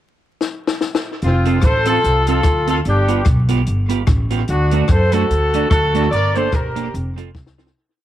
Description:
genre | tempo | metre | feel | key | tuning
ska | 147 BPM | 4/4 | swing 57% on 8ths | F major | A4 = 440 Hz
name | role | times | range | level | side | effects
compact cocktail drum kit | drums | 0.4-7.8 s | hi-hat, kick drum, rim click, snare drum | -19 LUFS | left 1 dB | tape echo
warm horn section | melody | 1.2-6.9 s | C4 to D5 | -18 LUFS | left 1 dB | none
upright bass | bass | 1.2-7.7 s | E1 to F#2 | -18 LUFS | equal | none
semi-hollow electric guitar | accompaniment | 1.5-7.7 s | A3 to A4 | -23 LUFS | right 8 dB | lush chorus
room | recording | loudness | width
moderate spring reverb, RT60 1.8 s, small room ambience | 1960s-style stereo, vinyl crackle | -14 LUFS | side -12 dB against mid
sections
0.0-1.2 pickup bar; 1.2-7.8 A section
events
drum fill 0.4-1.2, 7.3-7.8; fade-out 6.1-7.8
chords
0.0 N.C.; 1.2 F; 2.9 G7; 4.5 D; 6.1 Gm; 6.9 F

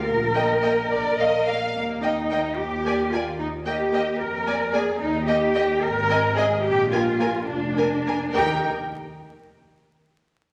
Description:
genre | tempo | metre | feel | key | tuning
quick classical-period movement for string orchestra | 72 BPM (dotted quarters) | 6/8 | straight | Eb major | A4 = 440 Hz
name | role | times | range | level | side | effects
rich studio cello section | bass | 0.0-8.7 s | Bb3 to Bb4 | -26 LUFS | equal | none
warm symphonic double bass section | bass | 0.1-8.7 s | F1 to F2 | -33 LUFS | equal | none
rich studio violin section | melody | 0.3-8.7 s | F5 to Ab5 | -33 LUFS | equal | none
rich symphonic violin section | second line | 0.4-8.7 s | Bb4 to F5 | -29 LUFS | equal | none
rich studio viola section | accompaniment | 0.4-8.7 s | Bb3 to G4 | -36 LUFS | equal | none
room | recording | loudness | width
wet recital hall reverb, RT60 1.7 s | vinyl crackle | -23 LUFS | mono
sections
0.0-8.3 A section; 8.3-10.0 B section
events
none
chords
0.1 N.C.; 1.7 Eb5; 2.6 Bb5/Eb; 3.4 Eb; 4.2 Bb7(no3)/F; 5.0 Eb; 5.8 Ab; 6.6 Bb; 8.3 Eb

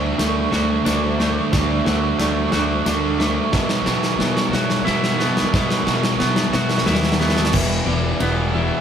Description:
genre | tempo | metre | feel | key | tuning
post-rock | 90 BPM | 3/4 | straight | E minor | A4 = 443 Hz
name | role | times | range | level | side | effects
twangy electric guitar | arpeggios | 0.0-8.8 s | B2 to F#4 | -27 LUFS | right 1 dB | none
fuzz guitar | riff | 0.0-8.8 s | B2 to F#4 | -23 LUFS | right 8 dB | distortion
overdriven semi-hollow guitar | riff | 0.0-8.8 s | E2 to D4 | -22 LUFS | left 3 dB | none
fuzz fingered electric bass | bass | 0.0-8.7 s | E1 to D#2 | -25 LUFS | equal | overdrive
big rock drum kit | drums | 0.2-8.4 s | crash cymbal, hi-hat, kick drum, ride cymbal, snare drum | -22 LUFS | left 1 dB | none
room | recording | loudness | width
moderate large studio reverb, RT60 1.4 s | band playing live in one room | -17 LUFS | side -8 dB against mid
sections
0.0-7.5 A section; 7.5-8.8 B section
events
build-up 0.0-7.5; drum fill 0.0-7.5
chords
0.0 D; 3.5 Bsus4; 7.5 Em

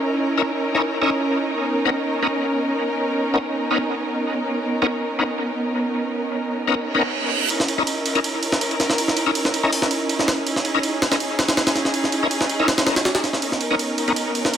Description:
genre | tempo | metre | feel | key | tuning
drum and bass, jungle | 162 BPM | 4/4 | straight | C# dorian | A4 = 440 Hz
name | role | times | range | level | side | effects
dark studio string section | sustained chords | 0.0-14.6 s | B3 to A#4 | -22 LUFS | right 1 dB | none
bright tonewheel organ | stabs | 0.4-14.1 s | B3 to A#4 | -24 LUFS | left 2 dB | overdrive, chorus vibrato, slow rotary speaker, dub echo
reverse cymbal | sound effects | 6.9-7.5 s | none | -24 LUFS | right 6 dB | none
jungle sampler-style drum kit | drums | 7.5-14.6 s | hi-hat, ride cymbal, snare drum | -21 LUFS | right 1 dB | none
room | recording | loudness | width
moderate lush hall reverb, RT60 2.5 s | none | -19 LUFS | side -9 dB against mid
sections
0.0-14.6 A section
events
reverse cymbal 6.9-7.5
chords
0.0 C#m69; 1.6 Bmaj9; 7.5 C#m69; 13.4 Bmaj9

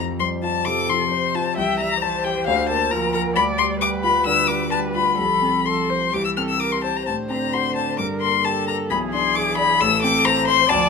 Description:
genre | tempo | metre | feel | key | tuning
quick classical-period movement for piano quartet | 132 BPM | 4/4 | rubato | F major | A4 = 441 Hz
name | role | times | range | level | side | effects
rich violin | melody | 0.0-10.9 s | F5 to F6 | -20 LUFS | left 7 dB | none
rich cello | second line | 0.0-10.9 s | D3 to G3 | -30 LUFS | right 8 dB | none
clear grand piano | accompaniment | 0.0-10.9 s | A1 to D5 | -25 LUFS | left 3 dB | none
warm viola | accompaniment | 0.7-10.9 s | G4 to E5 | -27 LUFS | right 3 dB | none
room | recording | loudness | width
light reverb | minimal, uncompressed stereo recording | -18 LUFS | side -5 dB against mid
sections
0.0-10.9 A section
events
none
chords
0.0 F; 1.6 C; 2.5 Bb/D; 3.4 G7/D; 5.2 F/C; 6.1 C; 7.1 D7/A; 8.0 Gm; 8.9 E7/B; 9.8 Am

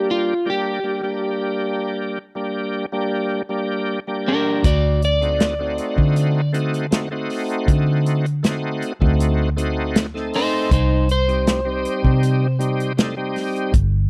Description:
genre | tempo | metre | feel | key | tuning
straight-eighth soul blues | 79 BPM | 4/4 | straight | G harmonic minor | A4 = 438 Hz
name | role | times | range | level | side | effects
electric slide guitar | melody | 0.0-12.6 s | D4 to D5 | -24 LUFS | equal | none
bright tonewheel organ | accompaniment | 0.0-13.7 s | G3 to A4 | -26 LUFS | equal | slow rotary speaker, overdrive, chorus vibrato
vintage muted fingered electric bass | bass | 4.6-14.1 s | G1 to D3 | -22 LUFS | equal | none
warm soul drum kit | drums | 4.6-13.9 s | hi-hat, kick drum, snare drum | -22 LUFS | equal | none
room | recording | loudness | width
studio reverb | none | -20 LUFS | mono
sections
0.0-14.1 A section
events
none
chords
0.0 Gm; 4.6 D7b9; 10.7 Cm

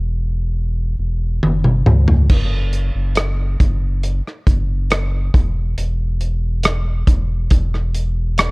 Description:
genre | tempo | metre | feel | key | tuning
pop ballad | 69 BPM | 4/4 | straight | unclear | A4 = 444 Hz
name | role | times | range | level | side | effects
sub bass with octave | bass | 0.0-8.5 s | E1 to C#2 | -18 LUFS | equal | none
modern studio drum kit | drums | 1.4-8.5 s | crash cymbal, hi-hat, kick drum, rim click, toms | -16 LUFS | equal | none
room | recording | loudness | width
little or no reverb | worn, warbling old tape, cassette tape, warbly pitch drift | -15 LUFS | side -29 dB against mid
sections
0.0-2.3 A section; 2.3-8.5 B section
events
drum fill 1.4-2.3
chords
none

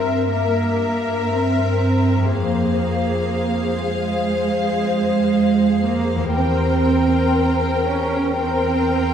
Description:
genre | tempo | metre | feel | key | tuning
classical | 60 BPM | 4/4 | rubato | F minor | A4 = 440 Hz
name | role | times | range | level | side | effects
clear symphonic violin section | melody | 0.0-9.1 s | E5 to G5 | -29 LUFS | left 2 dB | none
bright large flute ensemble | second line | 0.0-9.1 s | E5 to G5 | -30 LUFS | left 5 dB | none
rich symphonic violin section | second line | 0.0-9.1 s | Bb4 to C5 | -28 LUFS | left 3 dB | none
warm clarinet | second line | 0.0-9.1 s | Bb4 to C5 | -29 LUFS | left 5 dB | none
rich symphonic viola section | accompaniment | 0.0-9.1 s | Ab4 to Bb4 | -26 LUFS | left 2 dB | none
concert harp | arpeggios | 0.0-9.1 s | E2 to C5 | -28 LUFS | left 3 dB | none
rich symphonic cello section | bass | 0.0-9.1 s | Ab3 to Db4 | -21 LUFS | right 4 dB | none
rich symphonic double bass section | bass | 0.0-9.1 s | E2 to G2 | -24 LUFS | right 1 dB | none
room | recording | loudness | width
wet recital hall reverb, RT60 1.4 s | heard from further back in the room | -17 LUFS | side -8 dB against mid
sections
0.0-9.1 A section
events
none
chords
0.0 Edim/G; 2.3 Fm; 6.3 C7/E

